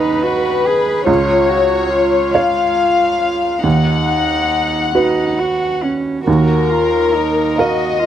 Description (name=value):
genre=neoclassical piano and strings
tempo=45-48 BPM (dotted quarters)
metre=6/8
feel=rubato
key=unclear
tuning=A4 = 440 Hz
part: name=warm chamber violin section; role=melody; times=0.0-8.1 s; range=Bb4 to F#5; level=-16 LUFS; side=left 6 dB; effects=none
part: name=rich cello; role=second line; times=0.0-8.1 s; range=Db4 to Ab4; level=-19 LUFS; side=right 4 dB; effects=none
part: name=bright baby grand piano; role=accompaniment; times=0.0-8.1 s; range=Db2 to F5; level=-18 LUFS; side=right 3 dB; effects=none
room=little or no reverb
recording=dry, close 1970s-style studio recording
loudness=-13 LUFS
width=side -10 dB against mid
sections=0.0-8.1 A section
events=none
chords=0.0 Db7sus2/Eb (rootless); 1.1 Db; 3.6 B/D#; 6.3 Ebsus2